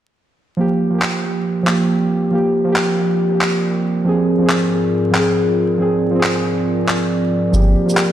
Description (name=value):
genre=future garage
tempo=138 BPM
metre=4/4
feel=swing 64% on 16ths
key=G phrygian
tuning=A4 = 441 Hz
part: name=muted felt-like synth keys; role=accompaniment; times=0.6-8.1 s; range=F3 to Ab4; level=-16 LUFS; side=right 1 dB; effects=chorus, vintage 12-bit sampler grit, diffuse ambient delay
part: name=dark analog pad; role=sustained chords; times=2.9-8.1 s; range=Ab2 to D5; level=-24 LUFS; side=equal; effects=chorus, phaser
part: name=electronic handclaps and shaker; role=drums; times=1.0-8.1 s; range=none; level=-22 LUFS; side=equal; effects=small room ambience
part: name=warm sub bass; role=bass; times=7.5-7.7 s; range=G1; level=-13 LUFS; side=equal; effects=tube saturation
room=wet lush hall reverb, RT60 2.3 s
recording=dreamy mix soaked in reverb, vinyl crackle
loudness=-14 LUFS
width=side -11 dB against mid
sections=0.6-8.1 A section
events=fade-in on analog synth pad 0.6-8.1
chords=0.6 Gm7; 4.1 Ab6; 7.5 Gm7